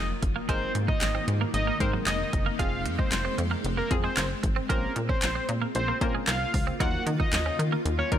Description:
dance-pop; 114 BPM; 4/4; straight; A4 = 440 Hz
fat analog lead; melody; 0.0-8.1 s; Bb4 to Gb5; -31 LUFS; equal; chorus, ping-pong delay
hollow square pluck; accompaniment; 0.0-8.2 s; Gb3 to C5; -35 LUFS; left 2 dB; chorus, sidechain pumping
shimmering ambient pad; sustained chords; 0.0-8.2 s; C3 to C5; -35 LUFS; left 1 dB; chorus, built-in reverb, sidechain pumping
twelve-string electric guitar; riff; 0.0-8.2 s; Gb3 to Ab4; -35 LUFS; right 9 dB; analog chorus
plucky analog bass; bass; 0.0-8.2 s; F1 to Eb3; -30 LUFS; equal; sidechain pumping
impact; sound effects; 0.2-0.5 s; barely audible
deep house drum kit; drums; 0.2-8.2 s; handclaps, hi-hat, kick drum, snare drum; -29 LUFS; equal
little or no reverb; -24 LUFS; side -10 dB against mid
0.0-8.2 A section
impact 0.0-0.5
0.5 Fm; 4.7 Bbmadd9; 6.8 Ebmadd9
| 0.49 1.01 1.54 2.07 | 2.59 3.12 3.65 4.17 | 4.70 5.22 5.75 6.28 | 6.80 7.33 7.86

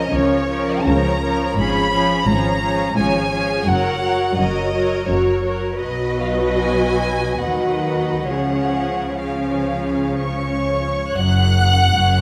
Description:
classical, slow romantic movement for string orchestra; 59-88 BPM; 3/4; rubato; F# major; A4 = 439 Hz
rich chamber violin section; melody; 0.0-12.2 s; Db5 to F#6; -26 LUFS; equal
rich studio violin section; second line; 0.0-12.2 s; G#4 to F#5; -26 LUFS; equal
rich studio viola section; accompaniment; 0.0-12.2 s; F3 to C#5; -25 LUFS; equal
rich symphonic cello section; bass; 0.1-12.2 s; F#2 to D#3; -25 LUFS; equal
warm chamber double bass section; bass; 0.1-12.2 s; F#1 to D#2; -27 LUFS; equal
moderate scoring stage reverb, RT60 1.6 s; -19 LUFS; mono
0.0-11.1 A section; 11.1-12.2 B section
0.0 Bbm/Db; 1.6 C#7/G#; 3.7 F#; 5.8 B; 8.3 C#; 11.1 F#5
0.12 0.87 | 1.59 2.28 2.97 | 3.68 4.39 5.10 | 5.82 6.64 7.44 | 8.30 9.22 10.20 | 11.15 11.95

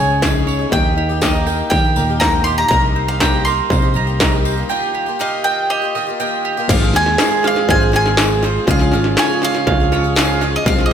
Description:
indie folk with a building arrangement; 121 BPM; 4/4; straight; Ab major; A4 = 442 Hz
bowl-back mandolin; melody; 0.0-10.9 s; Eb5 to C6; -19 LUFS; equal
fingerpicked old ladder-braced acoustic guitar; accompaniment; 0.0-4.7 s; Eb2 to Ab4; -26 LUFS; left 2 dB
picked twelve-string acoustic guitar; accompaniment; 0.0-10.9 s; Ab2 to Ab4; -24 LUFS; left 6 dB
bowl-back mandolin; arpeggios; 0.0-10.9 s; G4 to Bb5; -22 LUFS; right 6 dB
fingered electric bass; bass; 0.0-10.9 s; Ab1 to Eb3; -20 LUFS; equal
industrial drum kit; drums; 0.2-10.8 s; crash cymbal, kick drum, snare drum; -18 LUFS; equal; distortion
tambourine; percussion; 0.2-10.3 s; -32 LUFS; left 9 dB
mellow French horn; second line; 6.7-10.9 s; F4 to Ab4; -22 LUFS; right 10 dB
felt-muted upright piano; accompaniment; 6.7-10.9 s; Ab1 to Db5; -26 LUFS; left 5 dB
mellow tonewheel organ; sustained chords; 6.7-10.9 s; C3 to Ab4; -26 LUFS; left 2 dB; slow rotary speaker
moderate concert hall reverb, RT60 2.5 s; -13 LUFS; side -8 dB against mid
0.0-6.7 A section; 6.7-10.9 B section
break 4.7-6.7
0.0 Dbsus2; 0.7 Eb; 2.7 Cm7; 4.7 Ebadd9; 6.7 Ab6; 8.7 Db
0.22 | 0.72 1.22 1.71 2.21 | 2.71 3.21 3.71 4.20 | 4.70 5.20 5.70 6.19 | 6.69 7.19 7.68 8.18 | 8.68 9.17 9.67 10.16 | 10.66

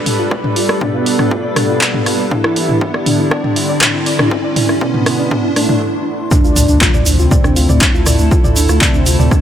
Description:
melodic techno; 120 BPM; 4/4; straight; A4 = 441 Hz
evolving wavetable pad; sustained chords; 0.0-9.4 s; D3 to B4; -22 LUFS; right 1 dB; chorus, built-in reverb, sidechain pumping
riser and impact; sound effects; 0.0-8.3 s; -23 LUFS; equal
granular cloud pad; texture; 0.0-9.4 s; A3 to C6; -23 LUFS; equal; built-in reverb, sidechain pumping
soft round pluck; arpeggios; 0.1-9.4 s; D4 to D5; -21 LUFS; left 1 dB; wide subtle chorus, sidechain pumping, tape echo
punchy analog drum machine; drums; 0.1-9.4 s; handclaps, hi-hat, rim click, toms; -16 LUFS; equal
electronic kick drum; drums; 0.3-9.4 s; -15 LUFS; equal; high-pass filter on kick
mellow synth brass; melody; 0.8-9.4 s; A2 to E4; -20 LUFS; equal; chorus, sidechain pumping, digital delay
tube shaker; percussion; 6.3-9.4 s; -22 LUFS; right 2 dB
round analog bass; bass; 6.4-9.3 s; D2; -14 LUFS; equal; sidechain pumping
light reverb; -11 LUFS; side -10 dB against mid
0.0-6.3 A section; 6.3-9.4 B section
build-up 0.0-6.3; riser 0.0-5.8; filter sweep on synth arpeggio sound 0.0-6.3; filter sweep on ambient pad 0.0-6.3; stop 5.8-6.3; drop 6.3-9.4; impact 6.3-8.3
0.0 G; 2.3 Cadd9; 6.3 Dm
| 0.31 0.81 1.31 1.81 | 2.31 2.81 3.31 3.81 | 4.31 4.81 5.31 5.81 | 6.31 6.81 7.31 7.81 | 8.31 8.81 9.31

